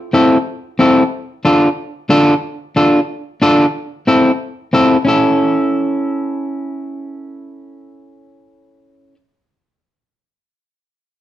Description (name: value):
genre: latin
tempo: 183 BPM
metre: 4/4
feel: straight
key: unclear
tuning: A4 = 439 Hz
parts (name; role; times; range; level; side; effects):
- electric guitar at the edge of break-up; accompaniment; 0.1-9.2 s; C4 to A4; -12 LUFS; equal; none
room: wet studio reverb, RT60 0.8 s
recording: none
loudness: -12 LUFS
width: side -13 dB against mid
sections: 0.0-5.1 A section; 5.1-7.7 B section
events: none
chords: 0.0 Am; 1.1 Dm; 3.7 Am; 5.1 A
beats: 0.14 0.47 0.80 | 1.12 1.45 1.78 2.11 | 2.44 2.76 3.09 3.42 | 3.75 4.08 4.41 4.73 | 5.06 5.39 5.72 6.05 | 6.38 6.70 7.03 7.36